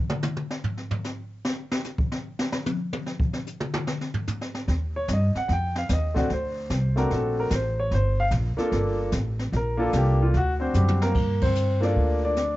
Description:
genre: jazz piano trio.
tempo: 148 BPM.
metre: 4/4.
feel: swing 66% on 8ths.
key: G minor.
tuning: A4 = 440 Hz.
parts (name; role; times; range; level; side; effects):
jazz brush drum kit; drums; 0.1-12.6 s; brushed snare drum, crash cymbal, hi-hat, kick drum, ride cymbal, snare drum, toms; -28 LUFS; equal; cassette tape.
upright bass; bass; 4.7-12.6 s; G1 to G2; -24 LUFS; equal; none.
warm concert grand piano; melody; 5.0-12.6 s; G3 to G5; -26 LUFS; equal; cassette tape, plate reverb.
room: light reverb.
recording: home recording on cassette, nothing above 7.7 kHz, faint mains hum.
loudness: -23 LUFS.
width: side -16 dB against mid.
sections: 0.0-11.1 A section; 11.1-12.6 B section.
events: grand piano solo 0.0-11.1; drum solo 0.0-4.7; drum fill 10.7-11.1; band accent 11.4.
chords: 0.0 N.C.; 4.7 Eb; 6.3 D7; 7.9 Gm7; 10.3 D7; 11.1 Gm7.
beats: 0.23 0.64 1.04 | 1.45 1.85 2.25 2.66 | 3.06 3.47 3.87 4.28 | 4.68 5.09 5.49 5.89 | 6.30 6.70 7.11 7.51 | 7.92 8.32 8.72 9.13 | 9.53 9.94 10.34 10.74 | 11.15 11.55 11.96 12.36.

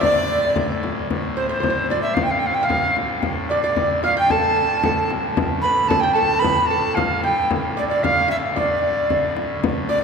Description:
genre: medieval dance.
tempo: 112 BPM.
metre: 2/4.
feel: straight.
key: D dorian.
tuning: A4 = 441 Hz.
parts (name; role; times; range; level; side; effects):
tenor recorder; melody; 0.0-10.0 s; C5 to B5; -19 LUFS; right 1 dB; none.
clear fiddle; second line; 0.0-0.5, 9.9-10.0 s; D5; -28 LUFS; left 5 dB; none.
lute; second line; 0.0-10.0 s; A4 to G5; -28 LUFS; right 4 dB; none.
pipe organ, trumpet; drone; 0.0-10.0 s; D2 to A2; -29 LUFS; left 1 dB; none.
frame drum; percussion; 0.0-10.0 s; none; -24 LUFS; left 3 dB; none.
room: wet cathedral reverb, RT60 4.4 s.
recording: recorded in a church or concert hall.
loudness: -17 LUFS.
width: side -6 dB against mid.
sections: 0.0-1.1 A section; 1.1-9.6 B section.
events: none.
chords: none.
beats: | 0.02 0.55 | 1.09 1.63 | 2.16 2.70 | 3.23 3.77 | 4.30 4.83 | 5.37 5.90 | 6.43 6.97 | 7.50 8.03 | 8.56 9.10 | 9.63.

